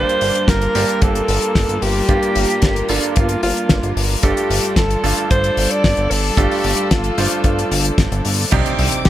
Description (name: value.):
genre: italo disco.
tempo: 112 BPM.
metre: 4/4.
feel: straight.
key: G minor.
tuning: A4 = 439 Hz.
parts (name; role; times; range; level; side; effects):
breathy alto saxophone; melody; 0.0-9.1 s; D4 to D5; -20 LUFS; equal; vintage 12-bit sampler grit, digital delay.
warm studio string section; sustained chords; 0.0-9.1 s; Eb3 to D6; -24 LUFS; left 1 dB; none.
bright baby grand piano; stabs; 0.0-9.1 s; G2 to C5; -23 LUFS; right 6 dB; none.
chorused synth bass; bass; 0.0-9.1 s; G1 to C2; -21 LUFS; equal; tube saturation.
damped 70s drum kit; drums; 0.1-9.1 s; crash cymbal, hi-hat, snare drum; -20 LUFS; left 2 dB; none.
kick drum; drums; 0.5-9.1 s; none; -17 LUFS; equal; none.
impact; sound effects; 8.6-9.1 s; none; -25 LUFS; equal; none.
room: light reverb, small room ambience.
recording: none.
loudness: -14 LUFS.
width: side -13 dB against mid.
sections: 0.0-8.5 A section.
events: impact 8.5-9.1.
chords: 0.0 Gm7; 4.2 Dm/G; 8.5 Cmadd9.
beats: 0.48 1.02 1.55 | 2.09 2.63 3.16 3.70 | 4.23 4.77 5.30 5.84 | 6.38 6.91 7.45 7.98 | 8.52 9.05.